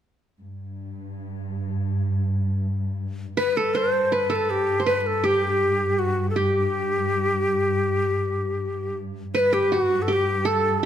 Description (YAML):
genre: Arabic maqam ensemble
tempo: 81 BPM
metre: 4/4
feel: straight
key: G maqam ajam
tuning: A4 = 440 Hz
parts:
  - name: dark symphonic cello section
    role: drone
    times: 0.4-10.9 s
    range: G2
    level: -27 LUFS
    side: equal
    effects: none
  - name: breathy ney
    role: melody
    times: 3.4-10.8 s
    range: F#4 to C5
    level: -23 LUFS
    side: left 2 dB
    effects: none
  - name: qanun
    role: second line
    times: 3.4-10.9 s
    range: F#4 to C5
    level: -25 LUFS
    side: right 4 dB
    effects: none
room: light reverb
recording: close, detailed microphones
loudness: -21 LUFS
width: side -10 dB against mid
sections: 0.4-3.4 A section; 3.4-10.9 B section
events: none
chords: none